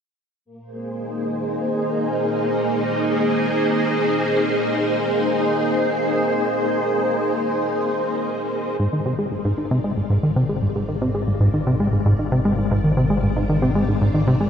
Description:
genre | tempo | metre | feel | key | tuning
ambient | 115 BPM | 4/4 | straight | Ab lydian | A4 = 437 Hz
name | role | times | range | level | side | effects
string machine, full ensemble | sustained chords | 0.5-14.5 s | Bb3 to D5 | -21 LUFS | equal | ensemble chorus
soft round pluck | arpeggios | 8.8-14.5 s | none | barely audible | none | none
plucky analog bass | riff | 8.8-14.5 s | Ab2 to Ab3 | -18 LUFS | equal | ping-pong delay
fat analog bass | bass | 8.8-14.5 s | Ab1 | -27 LUFS | equal | none
room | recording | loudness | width
wet cathedral reverb, RT60 6.2 s | in a vast, echoing space | -18 LUFS | side -8 dB against mid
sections
0.4-8.8 A section; 8.8-14.5 B section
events
filter sweep on string machine 0.4-8.8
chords
0.4 Ab

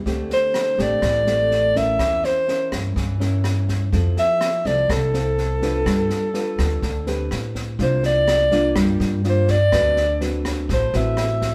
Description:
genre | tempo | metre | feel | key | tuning
bossa nova | 124 BPM | 4/4 | straight | unclear | A4 = 441 Hz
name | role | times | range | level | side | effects
nylon-string guitar | accompaniment | 0.0-11.5 s | A2 to B4 | -28 LUFS | equal | none
upright bass | bass | 0.0-11.5 s | A1 to A2 | -25 LUFS | equal | none
open jazz drum kit | drums | 0.1-11.5 s | kick drum, rim click, snare drum | -31 LUFS | equal | none
mellow soprano saxophone | melody | 0.3-11.5 s | A4 to E5 | -22 LUFS | equal | none
room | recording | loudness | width
moderate stone room reverb, RT60 1.0 s | band playing live in one room | -20 LUFS | mono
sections
0.0-7.8 A section; 7.8-11.5 B section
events
soprano saxophone solo 7.8-11.5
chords
0.1 D7sus4; 2.0 C7b9/E; 3.9 Fmaj7; 5.9 G7; 7.3 Am9; 7.8 C9sus4; 9.7 D13

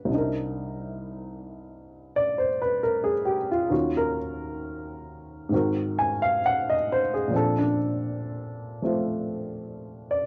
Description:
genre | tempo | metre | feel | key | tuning
jazz ballad | 66 BPM | 4/4 | swing 66% on 8ths | C minor | A4 = 436 Hz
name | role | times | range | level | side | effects
dark baby grand piano | solo | 0.0-10.3 s | C2 to Ab5 | -27 LUFS | equal | cassette tape
room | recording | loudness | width
moderate booth ambience, RT60 0.2 s | home recording on cassette, lossy compression artefacts | -26 LUFS | mono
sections
0.1-10.3 A section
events
none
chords
0.1 Cm7; 3.7 Ebm7; 5.5 Ab9; 7.3 Bbmaj7

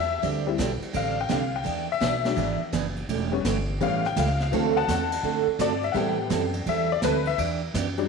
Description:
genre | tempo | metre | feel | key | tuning
country, western swing | 168 BPM | 4/4 | swing 65% on 8ths | unclear | A4 = 442 Hz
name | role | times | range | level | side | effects
honky-tonk upright piano | accompaniment | 0.0-8.1 s | C3 to A5 | -27 LUFS | left 10 dB | none
upright bass | bass | 0.0-8.1 s | E1 to A2 | -30 LUFS | equal | none
picked steel-string acoustic guitar | accompaniment | 0.2-7.9 s | D3 to A4 | -28 LUFS | right 11 dB | none
vintage brush drum kit | drums | 0.2-8.0 s | hi-hat, kick drum, ride cymbal, snare drum | -33 LUFS | right 1 dB | none
room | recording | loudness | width
moderate echo chamber reverb, RT60 1.3 s, studio reverb | 1960s-style stereo with parts hard left and right | -23 LUFS | side -4 dB against mid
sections
0.0-8.1 A section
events
honky-tonk piano solo 0.0-8.1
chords
0.2 D7sus4; 1.7 E7; 3.1 A7/E; 4.5 D7; 6.0 Am7; 7.4 Em7

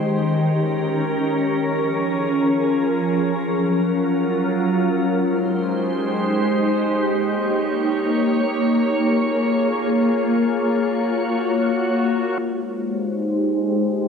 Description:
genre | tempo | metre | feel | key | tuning
hip hop | free time | none | none | Ab major | A4 = 440 Hz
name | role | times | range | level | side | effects
glassy FM pad | solo | 0.0-14.1 s | Eb3 to Db5 | -18 LUFS | equal | ensemble chorus, built-in reverb, low-pass filter
room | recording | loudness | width
wet lush hall reverb, RT60 2.5 s | none | -18 LUFS | side -6 dB against mid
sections
0.0-12.4 A section; 12.4-14.1 B section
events
filter sweep on ambient pad 12.4-14.1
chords
0.0 Eb7; 1.6 Bbm7; 3.4 Gbmaj7; 5.2 Abmaj7; 7.0 Eb7; 8.8 Bbm7; 10.6 Gbmaj7; 12.4 Abmaj7

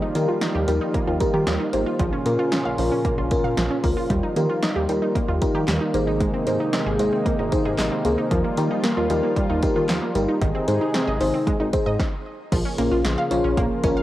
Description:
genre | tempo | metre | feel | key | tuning
synth-pop | 114 BPM | 4/4 | straight | Bb dorian | A4 = 442 Hz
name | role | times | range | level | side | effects
warm analog pad | sustained chords | 0.0-14.0 s | Bb2 to Bb4 | -27 LUFS | equal | chorus, cassette tape, shimmer reverb
wide unison pluck | arpeggios | 0.0-14.0 s | Eb3 to F5 | -26 LUFS | right 1 dB | cassette tape, analog delay, shimmer reverb
FM electric piano with soft pad layer | accompaniment | 0.2-14.0 s | Db4 to Db5 | -25 LUFS | left 1 dB | chorus, tremolo, cassette tape, shimmer reverb
chorused synth bass | bass | 0.2-14.0 s | G1 to Eb3 | -25 LUFS | equal | none
punchy analog drum machine | drums | 0.2-14.0 s | crash cymbal, handclaps, hi-hat, kick drum, snare drum | -26 LUFS | equal | cassette tape
room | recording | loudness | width
moderate spring reverb, RT60 1.6 s, digital ambience | home recording on cassette | -19 LUFS | side -14 dB against mid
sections
0.0-12.5 A section; 12.5-14.0 B section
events
stop 12.0-12.5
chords
0.0 Ebadd9; 2.0 Bbm; 4.1 Ebadd9; 5.9 Abadd9; 8.3 Ebadd9; 10.4 Ab; 12.5 Bbm

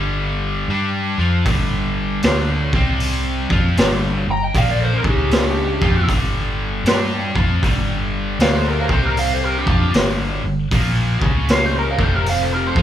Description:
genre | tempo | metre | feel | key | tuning
blues rock power trio and southern rock | 78 BPM | 4/4 | swing 65% on 8ths | G minor | A4 = 440 Hz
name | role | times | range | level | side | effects
distorted electric guitar | riff | 0.0-12.8 s | F2 to G4 | -22 LUFS | left 1 dB | distortion
vintage muted fingered electric bass | bass | 0.0-12.8 s | F1 to G2 | -21 LUFS | equal | none
raw garage drum kit | drums | 1.5-12.8 s | hi-hat, kick drum, snare drum | -19 LUFS | equal | none
lead guitar through a small cranked amp | melody | 4.3-12.8 s | G4 to Bb5 | -22 LUFS | equal | wah, overdrive
smooth overdriven lead guitar | second line | 4.3-12.8 s | C#4 to G5 | -30 LUFS | right 3 dB | none
room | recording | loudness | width
light reverb | band playing live in one room | -16 LUFS | side -11 dB against mid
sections
0.0-12.8 A section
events
none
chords
0.0 G5; 2.6 C5; 3.4 Gm; 4.9 C#5; 5.7 G5; 8.8 C5; 9.6 Gm; 11.1 C#5; 11.9 F5

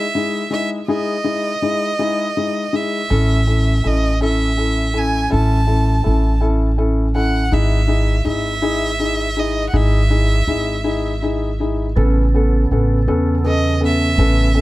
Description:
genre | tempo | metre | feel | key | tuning
six-eight pop ballad | 54 BPM (dotted quarters) | 6/8 | straight | unclear | A4 = 437 Hz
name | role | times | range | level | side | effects
clear violin | melody | 0.0-14.6 s | D#5 to A5 | -22 LUFS | right 2 dB | digital delay
felt-muted upright piano | accompaniment | 0.0-14.6 s | G#3 to A4 | -20 LUFS | left 2 dB | none
upright bass | bass | 3.1-14.6 s | G#1 to E2 | -17 LUFS | equal | none
percussive tonewheel organ | sustained chords | 12.0-14.6 s | C#3 to A4 | -24 LUFS | right 4 dB | overdrive, chorus vibrato, slow rotary speaker
room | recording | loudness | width
studio reverb | dark, warm production | -15 LUFS | side -17 dB against mid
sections
0.0-12.0 A section; 12.0-14.6 B section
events
none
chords
0.0 Emaj7/G#; 3.1 A; 7.5 Emaj7/G#; 12.0 Aadd9

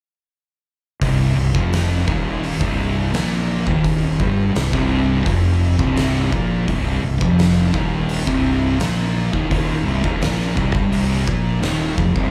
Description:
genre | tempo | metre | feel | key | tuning
stoner and doom metal | 85 BPM | 4/4 | straight | C minor | A4 = 441 Hz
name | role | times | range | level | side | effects
fuzz guitar | riff | 1.0-12.3 s | C2 to Bb3 | -22 LUFS | equal | distortion
fuzz fingered electric bass | bass | 1.0-12.3 s | C1 to Bb1 | -23 LUFS | equal | overdrive, tube saturation
oversized low-tuned drum kit | drums | 1.0-12.3 s | hi-hat, kick drum, snare drum | -26 LUFS | equal | none
room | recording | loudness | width
light reverb | live gig heard through the venue's PA, club ambience | -19 LUFS | mono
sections
1.0-12.3 A section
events
none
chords
1.0 Cm

